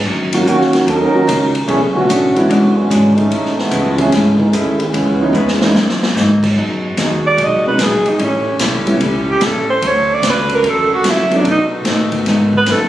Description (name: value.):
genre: jazz, big band swing.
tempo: 148 BPM.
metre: 4/4.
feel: swing 66% on 8ths.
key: B major.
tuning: A4 = 440 Hz.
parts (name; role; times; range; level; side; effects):
upright bass; bass; 0.0-12.9 s; E1 to B2; -18 LUFS; equal; none.
archtop guitar, miked and amplified; accompaniment; 0.1-12.9 s; F#2 to C#5; -23 LUFS; left 3 dB; none.
warm baby grand piano; accompaniment; 0.3-11.4 s; D3 to G#4; -17 LUFS; equal; none.
swinging big-band drum kit; drums; 0.3-12.8 s; crash cymbal, hi-hat, kick drum, ride cymbal, snare drum; -20 LUFS; left 1 dB; none.
mellow trombone section; second line; 0.5-6.0 s; D3 to A#4; -15 LUFS; right 2 dB; none.
dark saxophone section; sustained chords; 6.6-12.9 s; D#3 to A4; -22 LUFS; equal; none.
breathy alto saxophone; melody; 7.3-12.9 s; C#4 to D#5; -14 LUFS; right 2 dB; none.
room: moderate large studio reverb, RT60 1.2 s.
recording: recorded on a phone in the room, club reverb, compression.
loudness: -12 LUFS.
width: side -13 dB against mid.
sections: 0.0-6.6 A section; 6.6-12.9 B section.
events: trombone section solo 0.0-6.6; drum fill 5.3-6.2; alto saxophone solo 6.6-12.9.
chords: 0.1 D#m7; 1.7 Bm9; 2.5 E9; 3.3 Amaj7; 4.9 C#m7; 5.8 F#13; 6.6 B6; 8.2 A7; 9.8 Dmaj7; 11.4 B7.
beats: | 0.06 0.47 0.87 1.28 | 1.69 2.09 2.50 2.91 | 3.31 3.72 4.13 4.53 | 4.94 5.35 5.75 6.16 | 6.57 6.97 7.38 7.79 | 8.20 8.60 9.01 9.41 | 9.82 10.23 10.63 11.04 | 11.45 11.86 12.26 12.67.